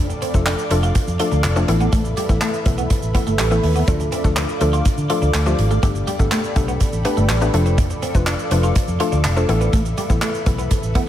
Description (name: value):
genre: dance-pop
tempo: 123 BPM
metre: 4/4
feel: straight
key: D dorian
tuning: A4 = 440 Hz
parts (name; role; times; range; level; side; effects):
- mallet-like synth pluck; accompaniment; 0.0-11.1 s; E3 to B4; -23 LUFS; left 3 dB; chorus, sidechain pumping
- glassy FM pad; sustained chords; 0.0-11.1 s; A4 to D6; -26 LUFS; right 1 dB; ensemble chorus, built-in reverb, sidechain pumping
- twelve-string electric guitar; riff; 0.0-11.0 s; G3 to F4; -27 LUFS; right 3 dB; wide subtle chorus
- vintage muted fingered electric bass; bass; 0.0-10.9 s; F1 to D3; -20 LUFS; equal; sidechain pumping
- tube shaker; percussion; 0.1-10.9 s; none; -38 LUFS; right 8 dB; none
- soft-mallet drum kit; drums; 0.2-11.1 s; handclaps, hi-hat, kick drum; -21 LUFS; equal; none
room: small room ambience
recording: none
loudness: -16 LUFS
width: side -11 dB against mid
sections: 0.0-11.1 A section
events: none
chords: 0.0 Dm/F; 1.7 Asus2; 3.9 Dm; 5.8 Gadd9; 7.5 Dm/F; 9.5 Asus2